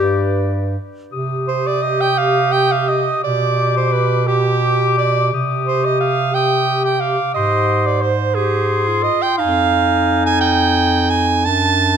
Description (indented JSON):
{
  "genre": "classical, lyrical piece for single-reed quartet",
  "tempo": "58 BPM (dotted quarters)",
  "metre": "6/8",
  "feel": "rubato",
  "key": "C minor",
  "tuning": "A4 = 438 Hz",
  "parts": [
    { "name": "warm clarinet", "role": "melody", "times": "0.0-12.0 s", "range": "D5 to Eb6", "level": "-23 LUFS", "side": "left 9 dB", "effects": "none" },
    { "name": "clear alto saxophone", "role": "second line", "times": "0.0-12.0 s", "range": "G4 to A5", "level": "-18 LUFS", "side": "right 7 dB", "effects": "none" },
    { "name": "warm clarinet", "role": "accompaniment", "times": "0.0-12.0 s", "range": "D4 to G4", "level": "-22 LUFS", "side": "left 4 dB", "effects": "none" },
    { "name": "mellow bass clarinet", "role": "bass", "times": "0.0-12.0 s", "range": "F2 to C3", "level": "-20 LUFS", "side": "right 2 dB", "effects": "none" }
  ],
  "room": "moderate concert hall reverb, RT60 2.4 s",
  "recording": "close, detailed microphones",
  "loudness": "-14 LUFS",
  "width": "side -8 dB against mid",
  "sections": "0.0-1.1 A section; 1.1-12.0 B section",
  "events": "none",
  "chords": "0.0 G; 1.1 Cm; 3.2 G/B; 5.3 Cm; 7.3 Abmaj7; 9.4 Fm7; 11.5 D/F#"
}